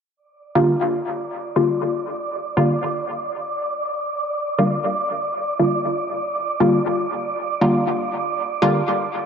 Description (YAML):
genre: dub techno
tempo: 119 BPM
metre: 4/4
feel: straight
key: G minor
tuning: A4 = 441 Hz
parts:
  - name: wind-like tuned noise texture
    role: texture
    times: 0.8-9.3 s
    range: D5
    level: -25 LUFS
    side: right 2 dB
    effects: built-in reverb
  - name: filtered dub chord stab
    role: stabs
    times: 0.6-8.8 s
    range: D3 to F4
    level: -20 LUFS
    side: left 1 dB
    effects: chorus, phaser, cassette tape, dub echo
room: wet spring reverb, RT60 1.9 s, digital ambience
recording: none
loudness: -19 LUFS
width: side -7 dB against mid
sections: 0.2-9.3 A section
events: none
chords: 0.2 Gm7